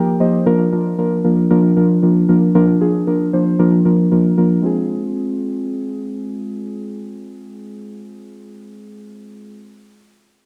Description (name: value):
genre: pop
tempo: 115 BPM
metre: 4/4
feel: straight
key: F dorian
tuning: A4 = 443 Hz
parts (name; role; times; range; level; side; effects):
- muted felt-like synth keys; solo; 0.0-9.6 s; F3 to G5; -17 LUFS; equal; chorus, slapback echo
room: moderate plate reverb, RT60 2.4 s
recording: none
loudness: -16 LUFS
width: mono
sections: 0.0-4.6 A section; 4.6-8.8 B section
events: synth keys fill 0.0-0.5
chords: 0.5 Bb/F; 4.6 Fm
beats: | 0.46 0.98 1.51 2.03 | 2.55 3.07 3.59 4.12 | 4.64 5.16 5.68 6.20 | 6.72 7.25 7.77 8.29